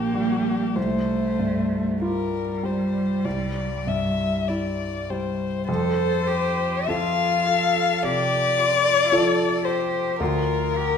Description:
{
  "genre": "classical, slow romantic movement for piano trio",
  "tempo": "48-57 BPM",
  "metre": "4/4",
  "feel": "rubato",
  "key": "F major",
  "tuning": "A4 = 438 Hz",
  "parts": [
    { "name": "dark violin", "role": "melody", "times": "0.0-11.0 s", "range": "G4 to F5", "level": "-24 LUFS", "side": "left 6 dB", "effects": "none" },
    { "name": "rich cello", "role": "second line", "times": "0.0-11.0 s", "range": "G3 to A4", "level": "-27 LUFS", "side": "right 4 dB", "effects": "none" },
    { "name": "warm concert grand piano", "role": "accompaniment", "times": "0.0-11.0 s", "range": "Bb1 to A4", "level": "-26 LUFS", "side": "equal", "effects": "none" }
  ],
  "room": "wet recital hall reverb, RT60 1.4 s",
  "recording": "minimal, uncompressed stereo recording",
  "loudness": "-20 LUFS",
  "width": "side -7 dB against mid",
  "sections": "0.0-5.7 A section; 5.7-11.0 B section",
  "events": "none",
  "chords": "0.0 Gm/Bb; 0.8 Csus4; 3.3 C; 5.7 F; 10.2 Bb/D",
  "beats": "| 0.77 2.02 3.25 4.49 | 5.68 6.88 8.03 9.12 | 10.20"
}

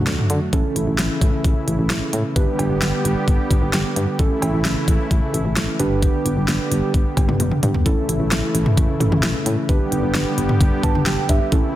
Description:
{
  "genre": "synth-pop",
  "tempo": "131 BPM",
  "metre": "4/4",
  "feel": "straight",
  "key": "A mixolydian",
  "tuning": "A4 = 440 Hz",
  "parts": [
    { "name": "muted felt-like synth keys", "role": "accompaniment", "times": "0.0-11.8 s", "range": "C#4 to A5", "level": "-25 LUFS", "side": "right 3 dB", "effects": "chorus" },
    { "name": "warm analog pad", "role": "sustained chords", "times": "0.0-11.8 s", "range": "C#3 to G4", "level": "-24 LUFS", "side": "equal", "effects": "chorus" },
    { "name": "solid FM bass", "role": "bass", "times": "0.0-11.6 s", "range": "G1 to D3", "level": "-22 LUFS", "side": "equal", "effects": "none" },
    { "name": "pop drum kit", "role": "drums", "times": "0.1-11.6 s", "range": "cowbell, hi-hat, kick drum, snare drum, toms", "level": "-19 LUFS", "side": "equal", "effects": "none" }
  ],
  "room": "light reverb, digital ambience",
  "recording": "dense, heavily limited modern master",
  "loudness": "-17 LUFS",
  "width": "side -14 dB against mid",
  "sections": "0.0-7.9 A section; 7.9-11.8 B section",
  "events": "drum fill 7.4-7.9; synth keys fill 10.6-11.5",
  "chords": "0.0 D; 0.5 A; 2.4 G; 4.2 A; 5.8 G; 7.9 A; 9.7 G",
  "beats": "0.07 | 0.53 0.99 1.45 1.90 | 2.36 2.82 3.28 3.74 | 4.19 4.65 5.11 5.57 | 6.03 6.48 6.94 7.40 | 7.86 8.32 8.77 9.23 | 9.69 10.15 10.61 11.06 | 11.52"
}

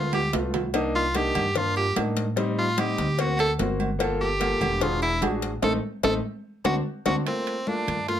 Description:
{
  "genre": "Afro-Cuban jazz",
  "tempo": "147 BPM",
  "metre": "4/4",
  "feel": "straight",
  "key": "G minor",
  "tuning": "A4 = 441 Hz",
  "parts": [
    { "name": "edgy tenor saxophone", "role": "melody", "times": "0.0-8.2 s", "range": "C4 to A4", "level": "-26 LUFS", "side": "equal", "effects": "none" },
    { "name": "warm grand piano", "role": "accompaniment", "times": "0.0-8.2 s", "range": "G3 to A4", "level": "-29 LUFS", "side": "left 2 dB", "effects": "none" },
    { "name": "upright bass", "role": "bass", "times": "0.0-8.2 s", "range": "E1 to A2", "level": "-30 LUFS", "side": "right 1 dB", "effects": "none" },
    { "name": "congas", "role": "percussion", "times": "0.1-8.2 s", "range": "none", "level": "-33 LUFS", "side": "left 2 dB", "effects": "none" },
    { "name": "timbales and agogo bells", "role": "percussion", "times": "0.1-8.2 s", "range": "none", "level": "-32 LUFS", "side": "right 8 dB", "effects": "none" },
    { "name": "cowbell", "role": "percussion", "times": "0.3-7.2 s", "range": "none", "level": "-32 LUFS", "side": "left 9 dB", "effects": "none" }
  ],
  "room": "light reverb",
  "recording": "none",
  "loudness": "-22 LUFS",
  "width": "side -10 dB against mid",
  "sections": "0.0-7.3 A section",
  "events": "drum fill 0.0-0.7, 6.7-7.3; tenor saxophone solo 0.0-7.3; band accent 5.6-7.3",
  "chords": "0.0 G7; 0.7 Cm7; 2.4 Am7b5; 3.2 D7b13; 4.0 Gm9; 4.8 E7; 5.6 Adim; 6.4 D7; 7.3 Gm9",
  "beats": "0.33 | 0.74 1.15 1.56 1.96 | 2.37 2.78 3.19 3.59 | 4.00 4.41 4.82 5.22 | 5.63 6.04 6.45 6.86 | 7.26 7.67 8.08"
}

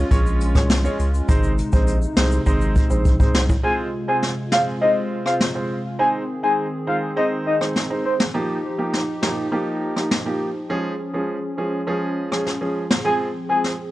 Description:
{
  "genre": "dancehall",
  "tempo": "102 BPM",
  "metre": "4/4",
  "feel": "straight",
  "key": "Ab major",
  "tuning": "A4 = 440 Hz",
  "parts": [
    { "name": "warm baby grand piano", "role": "accompaniment", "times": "0.0-13.7 s", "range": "F3 to Db5", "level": "-25 LUFS", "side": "right 1 dB", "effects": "none" },
    { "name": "hollow soft pad", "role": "sustained chords", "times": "0.0-13.9 s", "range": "C3 to Ab4", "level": "-28 LUFS", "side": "equal", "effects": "chorus, sidechain pumping" },
    { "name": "saturated sub bass", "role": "bass", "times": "0.0-3.6 s", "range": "Ab1 to Db2", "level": "-21 LUFS", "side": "equal", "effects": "none" },
    { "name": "jazz brush drum kit", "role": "drums", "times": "0.1-13.8 s", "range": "hi-hat, kick drum, rim click, snare drum", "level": "-20 LUFS", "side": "equal", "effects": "none" },
    { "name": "egg shaker and timbales", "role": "percussion", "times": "0.1-3.6 s", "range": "none", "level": "-38 LUFS", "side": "equal", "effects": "none" },
    { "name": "soft octave-layered synth lead", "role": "melody", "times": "3.6-8.1, 13.1-13.6 s", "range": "C5 to Ab5", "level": "-21 LUFS", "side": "left 1 dB", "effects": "chorus, phaser, tape echo" }
  ],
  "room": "little or no reverb",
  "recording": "dry, gritty hardware recording, nothing above 10.5 kHz",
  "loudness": "-18 LUFS",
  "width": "side -16 dB against mid",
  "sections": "0.0-3.6 A section; 3.6-13.9 B section",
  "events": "drum fill 2.5-3.6; break 3.6-13.1",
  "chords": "0.0 Db; 1.3 Ab; 3.6 Fm; 6.0 Ab; 8.3 Ebadd9; 10.7 Db; 13.1 Fm",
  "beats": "0.11 0.70 | 1.29 1.88 2.46 3.05 | 3.64 4.23 4.82 5.41 | 5.99 6.58 7.17 7.76 | 8.35 8.94 9.52 10.11 | 10.70 11.29 11.88 12.46 | 13.05 13.64"
}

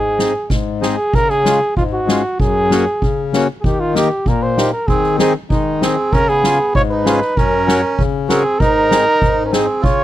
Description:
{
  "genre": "alpine folk, alpine dance band",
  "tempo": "97 BPM",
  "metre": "2/4",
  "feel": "straight",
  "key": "Db major",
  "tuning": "A4 = 440 Hz",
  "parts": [
    { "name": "dark trumpet", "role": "melody", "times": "0.0-10.0 s", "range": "Eb4 to Db5", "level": "-16 LUFS", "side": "right 1 dB", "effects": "none" },
    { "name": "accordion", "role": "accompaniment", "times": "0.0-10.0 s", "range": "Gb2 to Bb4", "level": "-18 LUFS", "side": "left 3 dB", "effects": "none" },
    { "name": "soft-mallet drum kit", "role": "drums", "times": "0.2-10.0 s", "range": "crash cymbal, kick drum, snare drum", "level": "-19 LUFS", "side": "equal", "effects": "none" },
    { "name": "melodica", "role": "second line", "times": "4.9-10.0 s", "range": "Ab3 to F4", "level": "-21 LUFS", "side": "right 6 dB", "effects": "none" }
  ],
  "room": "little or no reverb",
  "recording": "dry, close 1970s-style studio recording",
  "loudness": "-13 LUFS",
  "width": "side -13 dB against mid",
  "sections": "0.0-1.1 A section; 1.1-10.0 B section",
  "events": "none",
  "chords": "0.0 Ab; 1.1 Db; 2.4 Gbadd9; 3.6 Eb; 4.9 Ab/Eb; 6.1 Db; 7.4 Gb; 8.6 Ab",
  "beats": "0.50 | 1.13 1.76 | 2.39 3.02 | 3.63 4.25 | 4.88 5.50 | 6.12 6.75 | 7.37 7.98 | 8.60 9.21 | 9.83"
}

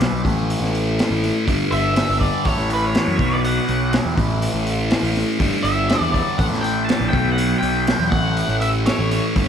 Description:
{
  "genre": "psychedelic rock",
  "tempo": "122 BPM",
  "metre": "4/4",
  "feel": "straight",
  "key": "unclear",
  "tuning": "A4 = 440 Hz",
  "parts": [
    { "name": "thick fuzz guitar", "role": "riff", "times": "0.0-9.5 s", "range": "G2 to B3", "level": "-21 LUFS", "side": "equal", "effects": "distortion, phaser, tape echo" },
    { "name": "fuzz picked electric bass", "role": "bass", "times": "0.0-9.5 s", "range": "G1 to F#2", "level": "-23 LUFS", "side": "equal", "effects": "overdrive" },
    { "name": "crunchy breakbeat drum kit", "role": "drums", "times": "0.0-9.5 s", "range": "hi-hat, kick drum, snare drum", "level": "-23 LUFS", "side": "equal", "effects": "tape echo" },
    { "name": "octave-fuzz lead guitar", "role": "melody", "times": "1.7-9.2 s", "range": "B4 to A5", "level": "-24 LUFS", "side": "left 1 dB", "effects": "distortion, tape echo" }
  ],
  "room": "small room ambience",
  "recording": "echo-heavy mix",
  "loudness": "-17 LUFS",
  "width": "side -8 dB against mid",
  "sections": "0.0-9.5 A section",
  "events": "none",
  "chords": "0.2 A5; 1.5 G5; 2.5 A; 3.2 B5; 4.2 A5; 5.4 G5; 6.4 A5; 7.1 B5; 8.1 A5",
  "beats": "0.00 0.49 0.98 | 1.47 1.96 2.45 2.94 | 3.44 3.93 4.42 4.92 | 5.41 5.90 6.40 6.89 | 7.39 7.88 8.38 8.88 | 9.37"
}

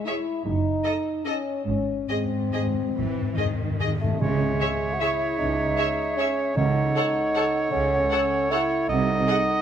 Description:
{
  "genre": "classical, orchestral ballroom waltz",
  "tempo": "132-167 BPM",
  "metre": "3/4",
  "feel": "rubato",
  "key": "C# minor",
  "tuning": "A4 = 440 Hz",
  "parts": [
    { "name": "mellow French horn section", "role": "sustained chords", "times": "0.0-9.6 s", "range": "G#3 to E4", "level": "-29 LUFS", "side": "left 3 dB", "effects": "none" },
    { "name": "rich symphonic violin section", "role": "melody", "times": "0.1-9.4 s", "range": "D#5 to F#5", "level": "-34 LUFS", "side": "left 3 dB", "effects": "none" },
    { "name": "rich symphonic violin section", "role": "second line", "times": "0.1-9.4 s", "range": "C#5 to D#5", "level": "-34 LUFS", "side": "left 1 dB", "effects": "none" },
    { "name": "rich symphonic viola section", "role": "accompaniment", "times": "0.1-9.4 s", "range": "G#4 to A4", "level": "-34 LUFS", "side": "right 1 dB", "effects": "none" },
    { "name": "warm studio cello section", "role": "bass", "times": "0.4-9.2 s", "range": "F#2 to E3", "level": "-31 LUFS", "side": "right 3 dB", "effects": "none" },
    { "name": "clear symphonic double bass section", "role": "bass", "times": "0.5-9.2 s", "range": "F#1 to C#2", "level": "-30 LUFS", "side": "right 4 dB", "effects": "none" },
    { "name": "timpani", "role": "percussion", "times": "1.7-7.1 s", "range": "G#2 to C#3", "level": "-29 LUFS", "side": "left 1 dB", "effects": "none" },
    { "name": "dark bassoon", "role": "accompaniment", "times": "4.0-9.6 s", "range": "G#3 to F#4", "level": "-26 LUFS", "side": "right 2 dB", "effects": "none" },
    { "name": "bright oboe", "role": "second line", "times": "4.2-9.6 s", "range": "C#5 to D#5", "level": "-29 LUFS", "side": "right 2 dB", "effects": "none" },
    { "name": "mellow clarinet", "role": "second line", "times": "4.2-9.6 s", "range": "G#4 to A4", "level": "-35 LUFS", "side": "right 1 dB", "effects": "none" },
    { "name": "mellow hollow silver concert flute", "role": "second line", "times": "4.2-9.6 s", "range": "E5 to F#5", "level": "-32 LUFS", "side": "left 2 dB", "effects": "none" }
  ],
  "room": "moderate concert hall reverb, RT60 2.1 s",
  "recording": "close, detailed microphones",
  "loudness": "-22 LUFS",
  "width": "side -9 dB against mid",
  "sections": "0.0-4.2 A section; 4.2-9.6 A section",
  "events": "timpani fill 1.7-4.2",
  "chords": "0.5 D#dim/F#; 1.7 G#; 4.2 C#m; 6.6 F#m/C#; 8.9 G#7/B# (rootless)",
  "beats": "0.06 | 0.45 0.84 1.26 | 1.67 2.09 2.54 | 2.95 3.37 3.80 | 4.21 4.61 5.01 | 5.39 5.77 6.18 | 6.57 6.95 7.35 | 7.73 8.11 8.51 | 8.90 9.28"
}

